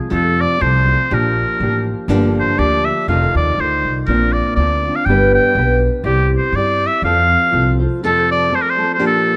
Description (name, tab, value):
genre	mexican folk, mariachi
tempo	122 BPM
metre	2/4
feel	swing 54% on 8ths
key	F major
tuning	A4 = 436 Hz
part	nylon-string guitar	accompaniment	0.0-9.4 s	F2 to D5	-21 LUFS	equal	none
part	clear oboe	melody	0.1-9.4 s	G4 to G5	-19 LUFS	equal	none
part	upright bass	bass	0.1-7.8 s	F1 to G2	-20 LUFS	equal	none
room	light reverb, studio reverb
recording	rough home demo mix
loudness	-16 LUFS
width	mono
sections	0.1-8.0 A section; 8.0-9.4 A section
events	none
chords	0.1 F; 1.1 Bb6; 2.1 Gm7; 3.1 F7; 4.1 Bbadd9; 5.1 G; 6.0 Cadd9; 7.0 F